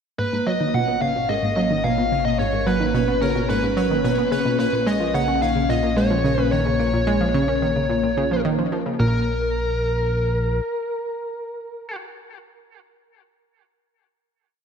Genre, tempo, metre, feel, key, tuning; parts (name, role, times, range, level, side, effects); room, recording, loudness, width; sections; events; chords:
ambient, sequencer-driven space music; 109 BPM; 4/4; straight; Bb phrygian; A4 = 440 Hz
bluesy overdriven lead guitar; melody; 0.2-12.0 s; Bb4 to Gb5; -24 LUFS; equal; distortion, ping-pong delay
vibraphone with soft mallets; arpeggios; 0.2-9.3 s; Bb3 to Bb4; -26 LUFS; moving between left 5 dB and right 6 dB; auto-pan, ping-pong delay
analog pluck; riff; 0.2-9.3 s; Ab2 to Db4; -23 LUFS; equal; chorus, ping-pong delay
fat analog bass; bass; 0.2-10.6 s; Bb1; -27 LUFS; equal
pulsing gated texture; texture; 0.8-9.0 s; Db4 to Db5; -31 LUFS; left 3 dB; chorus, built-in reverb
wet scoring stage reverb, RT60 1.9 s; -19 LUFS; side -7 dB against mid
0.2-9.0 A section; 9.0-11.2 final chord
filter sweep on synth arpeggio sound 0.2-9.0
0.2 Abm7; 4.6 Bbm; 9.0 N.C.